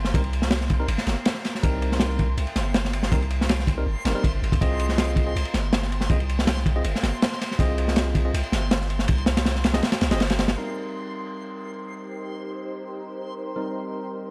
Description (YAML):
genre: drum and bass, jungle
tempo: 161 BPM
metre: 4/4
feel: straight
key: C minor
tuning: A4 = 440 Hz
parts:
  - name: long sustained 808-style bass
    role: bass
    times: 0.0-10.6 s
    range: G1 to Eb2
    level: -28 LUFS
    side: equal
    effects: none
  - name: crunchy breakbeat drum kit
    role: drums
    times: 0.0-10.6 s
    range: kick drum, ride cymbal, snare drum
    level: -26 LUFS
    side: equal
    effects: none
  - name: backwards swelling texture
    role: texture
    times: 0.0-14.3 s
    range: C6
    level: -41 LUFS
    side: equal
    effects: built-in reverb
  - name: tine electric piano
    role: stabs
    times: 0.1-14.3 s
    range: G3 to Eb5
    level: -34 LUFS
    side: equal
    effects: dub echo
  - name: granular cloud pad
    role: sustained chords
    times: 11.9-14.3 s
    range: Eb4 to C5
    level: -37 LUFS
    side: equal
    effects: built-in reverb
room: studio reverb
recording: dry, gritty hardware recording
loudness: -24 LUFS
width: mono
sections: 0.0-10.6 A section; 10.6-14.3 B section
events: none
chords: 0.0 Cm7; 4.6 Fm7; 10.6 Cm7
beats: | 0.14 0.51 0.89 1.26 | 1.63 2.00 2.38 2.75 | 3.12 3.49 3.87 4.24 | 4.61 4.99 5.36 5.73 | 6.10 6.48 6.85 7.22 | 7.59 7.97 8.34 8.71 | 9.08 9.46 9.83 10.20 | 10.57 10.95 11.32 11.69 | 12.07 12.44 12.81 13.18 | 13.56 13.93 14.30